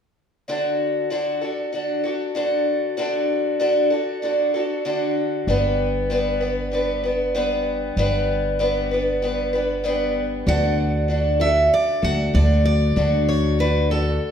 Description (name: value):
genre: folk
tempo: 96 BPM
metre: 4/4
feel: straight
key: D major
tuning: A4 = 444 Hz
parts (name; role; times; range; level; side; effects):
- picked twelve-string acoustic guitar; accompaniment; 0.5-14.3 s; D3 to B4; -21 LUFS; left 1 dB; none
- upright bass; bass; 5.5-14.2 s; G1 to D2; -22 LUFS; equal; none
- picked steel-string acoustic guitar; melody; 10.5-14.3 s; A4 to F#5; -23 LUFS; right 1 dB; none
room: wet recital hall reverb, RT60 1.2 s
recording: recorded in a church or concert hall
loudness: -19 LUFS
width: side -8 dB against mid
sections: 0.5-10.5 A section; 10.5-14.3 B section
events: none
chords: 0.5 D; 5.5 G; 10.5 D